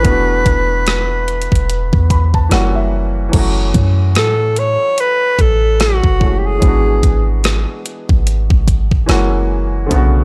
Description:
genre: contemporary R&B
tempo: 73 BPM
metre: 4/4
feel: swing 58% on 16ths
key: unclear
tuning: A4 = 441 Hz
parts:
  - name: breathy alto saxophone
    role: melody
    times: 0.0-7.3 s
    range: F#4 to C#5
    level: -19 LUFS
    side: equal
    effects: tape echo
  - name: warm grand piano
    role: accompaniment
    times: 0.0-10.2 s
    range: C#3 to B5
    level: -23 LUFS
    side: equal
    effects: none
  - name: clean 808-style bass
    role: bass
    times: 0.0-10.2 s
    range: E1 to A2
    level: -17 LUFS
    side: equal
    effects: none
  - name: gated 80s digital drum machine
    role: drums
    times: 0.0-10.1 s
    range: crash cymbal, hi-hat, kick drum, rim click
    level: -18 LUFS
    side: equal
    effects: overdrive
room: little or no reverb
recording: dry, gritty hardware recording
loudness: -14 LUFS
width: mono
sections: 0.0-3.3 A section; 3.3-10.2 B section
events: grand piano fill 1.7-3.3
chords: 0.0 E9sus4; 2.5 F#7b9; 3.3 F#m7; 6.6 E7/G#; 9.1 F#7

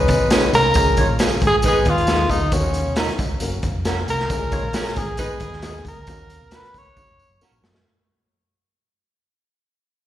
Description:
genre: uptempo 1960s-style soul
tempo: 135 BPM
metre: 4/4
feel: straight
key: Db mixolydian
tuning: A4 = 439 Hz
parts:
  - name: mellow horn section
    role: second line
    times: 0.0-5.5 s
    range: Ab3 to Db5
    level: -24 LUFS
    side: left 1 dB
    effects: slapback echo
  - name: dark upright piano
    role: accompaniment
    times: 0.0-7.7 s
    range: Ab3 to Db5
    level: -29 LUFS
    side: left 5 dB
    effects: slapback echo
  - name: hollow-body short-scale fingered electric bass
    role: bass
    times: 0.0-7.8 s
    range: F1 to Gb2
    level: -25 LUFS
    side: equal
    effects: none
  - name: raw garage drum kit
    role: drums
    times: 0.1-7.8 s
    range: hi-hat, kick drum, snare drum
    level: -22 LUFS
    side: equal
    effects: none
  - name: tambourine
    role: percussion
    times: 0.1-7.7 s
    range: none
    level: -34 LUFS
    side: right 2 dB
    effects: none
  - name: electric guitar through a small old amp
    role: stabs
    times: 0.3-7.5 s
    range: Gb3 to Bb4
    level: -28 LUFS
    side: right 4 dB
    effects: wide subtle chorus, slapback echo
  - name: warm tenor saxophone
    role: melody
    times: 0.5-7.4 s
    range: Db4 to Db5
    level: -21 LUFS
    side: equal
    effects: slapback echo, analog delay
room: light reverb, studio reverb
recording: live gig heard through the venue's PA, recital hall reverb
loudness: -17 LUFS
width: side -12 dB against mid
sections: 0.8-7.9 A section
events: fade-out 0.8-7.9; drum fill 7.0-7.9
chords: 0.0 Dbsus2; 0.8 Db; 1.6 Abm; 2.5 Ebm7; 3.4 Gb; 4.3 Db; 5.2 Abm; 6.1 Ebm7; 7.0 Gb

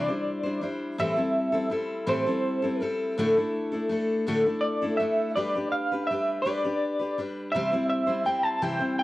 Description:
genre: folk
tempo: 55 BPM (dotted quarters)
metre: 6/8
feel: straight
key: C major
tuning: A4 = 443 Hz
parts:
  - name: electric guitar through a small old amp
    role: melody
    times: 0.0-9.0 s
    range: C5 to A5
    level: -27 LUFS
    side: right 1 dB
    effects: tremolo, cassette tape, plate reverb
  - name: picked steel-string acoustic guitar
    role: accompaniment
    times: 0.0-9.0 s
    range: A2 to C5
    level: -27 LUFS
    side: left 1 dB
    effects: cassette tape, plate reverb
room: moderate small room reverb, RT60 0.5 s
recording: home recording on cassette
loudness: -24 LUFS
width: side -17 dB against mid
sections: 0.0-9.0 A section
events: none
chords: 0.0 Cadd9; 1.0 Am7; 3.2 Dsus2/A; 5.4 G; 7.5 C

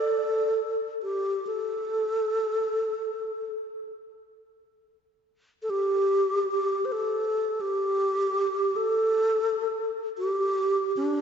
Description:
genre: world meditative, free-time meditation music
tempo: free time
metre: none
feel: none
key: unclear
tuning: A4 = 440 Hz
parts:
  - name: breathy bass flute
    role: solo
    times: 0.0-11.2 s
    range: D4 to C5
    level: -24 LUFS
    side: equal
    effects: ping-pong delay
room: wet lush hall reverb, RT60 2.8 s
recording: dreamy mix soaked in reverb, nothing above 7.7 kHz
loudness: -24 LUFS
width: side -7 dB against mid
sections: 0.0-11.2 A section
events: none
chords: none

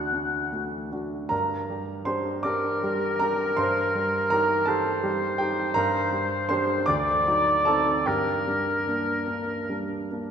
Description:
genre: classical, romantic duo for oboe and grand piano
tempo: 53 BPM (dotted quarters)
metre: 6/8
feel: uneven beats, rubato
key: G minor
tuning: A4 = 440 Hz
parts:
  - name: warm oboe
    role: melody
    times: 0.0-9.9 s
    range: Bb4 to F#5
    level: -25 LUFS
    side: left 1 dB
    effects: none
  - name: warm baby grand piano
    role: accompaniment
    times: 0.0-10.3 s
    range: D2 to D6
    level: -26 LUFS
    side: right 2 dB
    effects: none
room: wet concert hall reverb, RT60 2.5 s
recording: minimal, uncompressed stereo recording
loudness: -23 LUFS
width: side -7 dB against mid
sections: 0.0-10.3 A section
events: none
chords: 0.0 D; 1.3 Gm; 3.6 Cm/G; 5.8 Gm; 6.9 D7b9; 8.1 Gm

